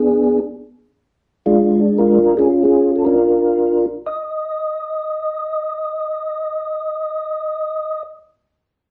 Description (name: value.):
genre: jazz.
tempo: free time.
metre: none.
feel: none.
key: unclear.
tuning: A4 = 440 Hz.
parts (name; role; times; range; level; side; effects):
percussive tonewheel organ; solo; 0.0-8.0 s; Ab3 to Eb5; -18 LUFS; equal; slow rotary speaker, chorus vibrato.
room: wet club reverb, RT60 0.6 s.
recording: heard from further back in the room.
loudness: -18 LUFS.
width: mono.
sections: 0.8-4.0 A section; 4.0-7.6 B section.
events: slowing down 0.8-4.0.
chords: 0.0 Bm6; 0.8 Ddim/Ab; 1.6 Bb7; 2.4 Db6; 3.2 Bb; 4.0 N.C..